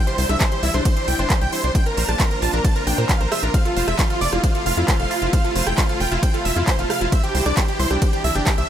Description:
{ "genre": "uplifting trance", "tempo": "134 BPM", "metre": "4/4", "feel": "straight", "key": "F major", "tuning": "A4 = 440 Hz", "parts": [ { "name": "supersaw chords", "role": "melody", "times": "0.0-8.7 s", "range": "F4 to A5", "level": "-25 LUFS", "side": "right 1 dB", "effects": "cassette tape, sidechain pumping, ping-pong delay" }, { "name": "plucky unison lead", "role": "second line", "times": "0.0-8.7 s", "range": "F5 to A6", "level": "-29 LUFS", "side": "right 1 dB", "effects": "sidechain pumping, ping-pong delay" }, { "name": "rich symphonic string section", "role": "sustained chords", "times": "0.0-8.7 s", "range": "C3 to F4", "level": "-29 LUFS", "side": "equal", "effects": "sidechain pumping" }, { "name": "analog pluck", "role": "arpeggios", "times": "0.1-8.6 s", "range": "D4 to C5", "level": "-29 LUFS", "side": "equal", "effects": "chorus, sidechain pumping, ping-pong delay" }, { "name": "big-room dance drum kit", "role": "drums", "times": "0.1-8.7 s", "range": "handclaps, hi-hat, ride cymbal, rim click", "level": "-26 LUFS", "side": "right 2 dB", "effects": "sidechain pumping on hats, sidechain pumping on cymbals" }, { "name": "tight sequencer bass", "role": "bass", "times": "0.2-8.6 s", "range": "F1 to Bb2", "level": "-22 LUFS", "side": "equal", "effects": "sidechain pumping" }, { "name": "electronic kick drum", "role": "drums", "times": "0.4-8.6 s", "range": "none", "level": "-19 LUFS", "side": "equal", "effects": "none" } ], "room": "digital ambience", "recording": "none", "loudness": "-17 LUFS", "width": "side -10 dB against mid", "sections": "0.0-8.7 A section", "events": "none", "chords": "0.0 Cadd9; 1.8 Bbadd9; 3.5 Fmaj7; 7.1 Cadd9" }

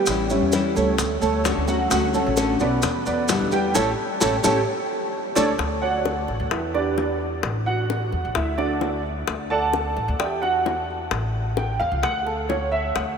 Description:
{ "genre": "latin, Cuban son and guajira", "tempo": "130 BPM", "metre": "4/4", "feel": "straight", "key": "D major", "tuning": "A4 = 439 Hz", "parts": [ { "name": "nylon-string guitar", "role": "accompaniment", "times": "0.0-5.5 s", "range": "B2 to F#4", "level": "-26 LUFS", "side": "left 4 dB", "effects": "wide subtle chorus" }, { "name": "dark baby grand piano", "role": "arpeggios", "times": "0.0-13.2 s", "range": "F#3 to A5", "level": "-23 LUFS", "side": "right 3 dB", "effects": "ensemble chorus" }, { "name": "upright bass", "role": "bass", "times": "0.0-13.2 s", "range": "A1 to E2", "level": "-28 LUFS", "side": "left 1 dB", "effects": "none" }, { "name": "bongos", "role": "percussion", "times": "0.1-13.2 s", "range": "none", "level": "-29 LUFS", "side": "left 8 dB", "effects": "none" }, { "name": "maracas", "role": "percussion", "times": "0.1-5.5 s", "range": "none", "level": "-31 LUFS", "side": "right 3 dB", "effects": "none" } ], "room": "wet huge ambient reverb, RT60 7.7 s", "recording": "dreamy mix soaked in reverb", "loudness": "-20 LUFS", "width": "side -6 dB against mid", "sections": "0.0-5.6 A section; 5.6-13.2 B section", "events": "band accent 3.8-5.6; drum fill 4.9-5.6; grand piano solo 5.6-13.2", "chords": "0.1 A7; 1.0 Dmaj7; 2.8 Em7; 3.8 A7; 4.7 D5; 5.6 Dmaj7; 6.5 Em7; 7.4 A5; 8.4 D; 10.2 Em7; 11.1 A; 12.0 D5" }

